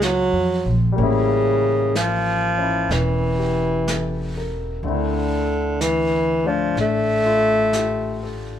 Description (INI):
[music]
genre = jazz ballad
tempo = 62 BPM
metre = 4/4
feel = swing 66% on 8ths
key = unclear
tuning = A4 = 435 Hz
[part]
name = breathy baritone saxophone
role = melody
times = 0.0-8.3 s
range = C#3 to A3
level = -20 LUFS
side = equal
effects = none
[part]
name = warm concert grand piano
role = accompaniment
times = 0.0-8.6 s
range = D3 to Bb4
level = -27 LUFS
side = left 6 dB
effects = none
[part]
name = upright bass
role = bass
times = 0.0-8.6 s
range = E1 to F2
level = -24 LUFS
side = equal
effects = none
[part]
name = vintage brush drum kit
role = drums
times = 0.0-8.6 s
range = brushed snare drum, hi-hat, snare drum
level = -31 LUFS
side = right 2 dB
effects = none
[sound]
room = light reverb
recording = band playing live in one room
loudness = -18 LUFS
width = side -10 dB against mid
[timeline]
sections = 0.0-8.6 A section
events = none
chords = 0.0 Gbmaj9; 1.0 A7b9; 4.8 Dsus2